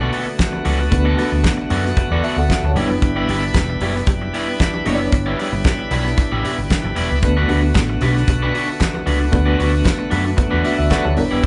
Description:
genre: disco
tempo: 114 BPM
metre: 4/4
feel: straight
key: D major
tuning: A4 = 440 Hz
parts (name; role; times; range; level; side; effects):
- electric guitar at the edge of break-up; accompaniment; 0.0-11.5 s; B3 to D5; -26 LUFS; equal; none
- reed electric piano; accompaniment; 0.0-11.5 s; G3 to A5; -26 LUFS; equal; fast tremolo
- bright tonewheel organ; sustained chords; 0.0-11.5 s; D3 to B4; -28 LUFS; equal; overdrive, slow rotary speaker
- fingered electric bass; bass; 0.0-11.5 s; E1 to F#2; -23 LUFS; equal; none
- damped 70s drum kit; drums; 0.1-11.5 s; hi-hat, kick drum, snare drum; -23 LUFS; equal; none
- congas; percussion; 0.4-11.3 s; none; -33 LUFS; equal; none
- group handclap; percussion; 7.7-11.0 s; none; -38 LUFS; equal; none
room: moderate large studio reverb, RT60 1.1 s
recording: band playing live in one room, nothing above 11.0 kHz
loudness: -18 LUFS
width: mono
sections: 0.0-11.5 A section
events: reed electric piano fill 10.4-11.4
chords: 0.0 D6; 2.8 G6; 7.2 D6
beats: 0.39 | 0.92 1.44 1.97 2.50 | 3.02 3.55 4.08 4.60 | 5.13 5.65 6.18 6.70 | 7.23 7.76 8.28 8.81 | 9.33 9.86 10.38 10.91 | 11.44

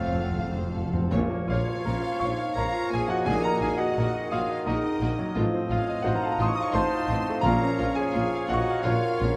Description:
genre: classical, romantic movement for piano and orchestra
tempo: 85 BPM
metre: 3/4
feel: rubato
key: Bb minor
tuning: A4 = 440 Hz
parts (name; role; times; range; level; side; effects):
- clear concert grand piano; melody; 0.0-9.4 s; F2 to Eb6; -30 LUFS; equal; none
- rich studio violin section; melody; 0.0-9.3 s; F4 to F5; -44 LUFS; equal; none
- clear clarinet; second line; 0.0-9.4 s; Eb4 to Eb5; -39 LUFS; equal; none
- clear oboe; second line; 0.0-9.4 s; Db5 to F5; -41 LUFS; equal; none
- rich studio violin section; second line; 0.0-9.4 s; A4 to Eb6; -43 LUFS; equal; none
- silver concert flute; second line; 0.0-9.4 s; A4 to C6; -41 LUFS; equal; none
- rich studio viola section; accompaniment; 0.0-9.3 s; F3 to F4; -43 LUFS; equal; none
- warm bassoon; accompaniment; 0.0-9.4 s; Eb3 to C4; -38 LUFS; equal; none
- dark trombone section; sustained chords; 0.0-7.7 s; Eb3 to Eb4; -39 LUFS; equal; none
- mellow French horn section; sustained chords; 0.0-9.4 s; C4 to Bb4; -37 LUFS; equal; none
- rich studio double bass section; bass; 0.0-9.3 s; F1 to Bb1; -36 LUFS; equal; none
- rich symphonic cello section; bass; 0.0-9.3 s; F2 to Bb2; -37 LUFS; equal; none
- timpani; percussion; 0.0-8.4 s; F2 to Bb2; -35 LUFS; equal; none
- clear tuba; bass; 1.1-9.3 s; A1 to Bb1; -39 LUFS; equal; none
room: moderate concert hall reverb, RT60 2.2 s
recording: lossy compression artefacts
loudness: -26 LUFS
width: mono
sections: 0.0-1.1 A section; 1.1-9.4 B section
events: timpani fill 0.0-1.1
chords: 0.0 F; 1.1 Bbm; 3.3 Ebm/Bb; 5.4 F7/A; 7.4 Bbm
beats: 0.39 | 1.13 1.85 2.56 | 3.27 3.97 4.66 | 5.36 6.05 6.74 | 7.44 8.14 8.85

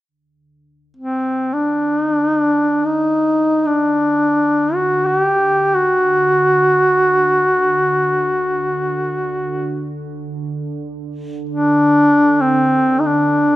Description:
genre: caucasian folk, Caucasian lament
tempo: free time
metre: none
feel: none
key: unclear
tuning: A4 = 440 Hz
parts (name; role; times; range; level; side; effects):
- deep dark ambient pad; drone; 1.7-13.6 s; D3; -27 LUFS; right 3 dB; chorus, built-in reverb
- warm duduk; melody; 1.0-13.6 s; C4 to G4; -14 LUFS; equal; none
room: light reverb, small room reverb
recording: rough home demo mix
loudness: -14 LUFS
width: side -15 dB against mid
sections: 0.1-13.6 A section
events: none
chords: none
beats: free time

